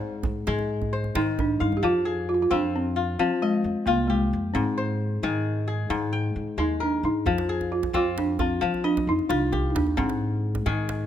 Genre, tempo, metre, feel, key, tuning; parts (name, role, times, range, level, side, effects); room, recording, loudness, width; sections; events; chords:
west african traditional, West African string and xylophone music; 88 BPM (dotted quarters); 12/8; straight; F dorian; A4 = 445 Hz
balafon; melody; 0.0-11.1 s; Ab3 to C5; -26 LUFS; right 2 dB
kora; arpeggios; 0.0-11.1 s; Ab2 to G5; -27 LUFS; left 5 dB
djembe; percussion; 0.0-1.8, 7.3-11.1 s; -33 LUFS; right 4 dB
upright bass; bass; 0.2-11.1 s; C2 to F3; -29 LUFS; equal
light reverb; close, detailed microphones; -23 LUFS; side -10 dB against mid
0.0-1.8 A section; 1.8-11.1 B section
0.0 Ab; 1.8 Fm; 4.5 Ab; 7.3 Fm; 10.0 Ab